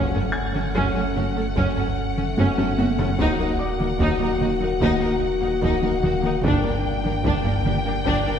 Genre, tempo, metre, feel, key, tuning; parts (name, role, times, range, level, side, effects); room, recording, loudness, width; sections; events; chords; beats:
cinematic, hybrid orchestral and electronic film score; 74 BPM; 4/4; straight; A4 = 440 Hz
warm symphonic violin section; melody; 0.0-8.4 s; F#5 to G5; -30 LUFS; left 4 dB
rich symphonic violin section; second line; 0.0-8.4 s; C#4 to Bb4; -31 LUFS; left 3 dB
rich studio viola section; accompaniment; 0.0-8.3 s; C#4 to Eb4; -30 LUFS; right 1 dB
mellow French horn section; sustained chords; 0.0-8.4 s; A3 to Gb4; -27 LUFS; left 4 dB
string-like resonator pluck; arpeggios; 0.0-8.4 s; Eb3 to F#4; -32 LUFS; left 1 dB
rich studio double bass section; bass; 0.0-8.1 s; F#1 to Eb2; -29 LUFS; right 2 dB
rich symphonic cello section; bass; 0.0-8.3 s; Eb2 to G2; -28 LUFS; right 3 dB
soft dub sub bass; bass; 0.0-8.4 s; Eb1 to G1; -31 LUFS; equal
felt-muted upright piano; texture; 0.0-6.5 s; D5 to Bb6; -34 LUFS; left 1 dB
taiko ensemble; drums; 0.6-8.4 s; -26 LUFS; equal
wet concert hall reverb, RT60 2.0 s; recorded in a church or concert hall; -19 LUFS; side -8 dB against mid
0.0-8.4 A section
drum fill 2.4-3.2
0.0 F#m; 3.2 Ebm; 6.4 Gm
0.76 1.57 2.38 | 3.19 4.00 4.81 5.62 | 6.44 7.25 8.06